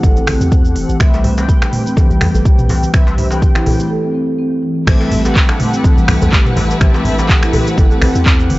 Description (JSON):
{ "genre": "afro house", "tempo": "124 BPM", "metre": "4/4", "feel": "swing 55% on 16ths", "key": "A dorian", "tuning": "A4 = 437 Hz", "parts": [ { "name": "marimba with soft mallets", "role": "arpeggios", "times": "0.0-8.6 s", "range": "E3 to A4", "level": "-18 LUFS", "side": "equal", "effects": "sidechain pumping, tape echo" }, { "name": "mellow synth brass", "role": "stabs", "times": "0.0-8.6 s", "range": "C4 to G5", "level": "-22 LUFS", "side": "left 1 dB", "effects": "chorus, sidechain pumping, tape echo" }, { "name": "warm 808-style bass", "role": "bass", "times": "0.0-8.6 s", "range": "E1 to E2", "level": "-18 LUFS", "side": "equal", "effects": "tube saturation, sidechain pumping" }, { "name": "afro-pop drum kit", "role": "drums", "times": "0.0-8.6 s", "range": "crash cymbal, finger snaps, handclaps, hi-hat, shaker, toms", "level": "-19 LUFS", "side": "equal", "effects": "none" }, { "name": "electronic kick drum", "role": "drums", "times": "0.0-8.4 s", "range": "none", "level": "-12 LUFS", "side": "equal", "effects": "none" }, { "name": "djembe", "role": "percussion", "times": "0.0-8.1 s", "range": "none", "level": "-22 LUFS", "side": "equal", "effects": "none" }, { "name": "congas", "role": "percussion", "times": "0.3-8.6 s", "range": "none", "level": "-22 LUFS", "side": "right 1 dB", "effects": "none" }, { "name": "clear symphonic string section", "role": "sustained chords", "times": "4.9-8.6 s", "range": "A3 to B4", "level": "-24 LUFS", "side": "left 1 dB", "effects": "sidechain pumping" } ], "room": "studio reverb", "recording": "dry, gritty hardware recording, cassette tape, nothing above 7.8 kHz", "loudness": "-10 LUFS", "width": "side -19 dB against mid", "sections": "0.0-4.9 A section; 4.9-8.6 B section", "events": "break 3.9-4.9; drop 4.9-8.6", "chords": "0.0 Am7; 1.0 Cmaj7; 4.9 Am7" }